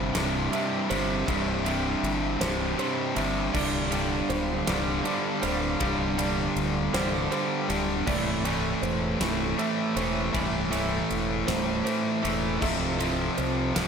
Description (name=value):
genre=post-rock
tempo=53 BPM (dotted quarters)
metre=6/8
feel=straight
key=C major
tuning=A4 = 440 Hz
part: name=large flute ensemble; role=sustained chords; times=0.0-13.9 s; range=C4 to F5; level=-39 LUFS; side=left 4 dB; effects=none
part: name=felt-muted upright piano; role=arpeggios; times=0.0-13.9 s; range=C5 to E5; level=-36 LUFS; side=right 4 dB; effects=digital delay
part: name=distorted electric guitar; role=riff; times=0.0-13.9 s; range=C2 to A3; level=-29 LUFS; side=left 10 dB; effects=overdrive
part: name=overdriven electric guitar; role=riff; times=0.0-13.9 s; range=C2 to A3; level=-29 LUFS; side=right 9 dB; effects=none
part: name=growling fingered electric bass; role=bass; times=0.0-13.9 s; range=C1 to C2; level=-32 LUFS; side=left 1 dB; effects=overdrive
part: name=huge arena drum kit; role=drums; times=0.1-13.9 s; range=crash cymbal, kick drum, ride cymbal, snare drum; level=-34 LUFS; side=equal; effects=none
room=light reverb, studio reverb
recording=none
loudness=-24 LUFS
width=side -6 dB against mid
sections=0.0-13.9 A section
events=none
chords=0.0 C; 3.5 G7sus4/C; 8.1 Am7/C; 12.6 Fmaj7/C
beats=0.14 | 1.27 2.41 | 3.54 4.67 | 5.80 6.94 | 8.07 9.21 | 10.34 11.48 | 12.62 13.76